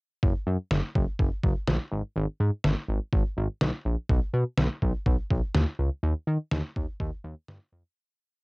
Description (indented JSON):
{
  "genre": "synth-pop",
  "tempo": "124 BPM",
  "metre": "4/4",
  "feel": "straight",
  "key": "G# dorian",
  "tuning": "A4 = 440 Hz",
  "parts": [
    { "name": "chorused synth bass", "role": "bass", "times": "0.2-7.8 s", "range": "F#1 to D#3", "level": "-26 LUFS", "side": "equal", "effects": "none" },
    { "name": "detuned 8-bit digital drum machine", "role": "drums", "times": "0.2-7.6 s", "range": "kick drum, snare drum", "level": "-26 LUFS", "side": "equal", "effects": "cassette tape" }
  ],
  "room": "little or no reverb",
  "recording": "home recording on cassette",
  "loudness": "-25 LUFS",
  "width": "side -27 dB against mid",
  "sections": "0.2-8.0 verse",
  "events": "fade-out 6.0-8.0",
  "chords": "none"
}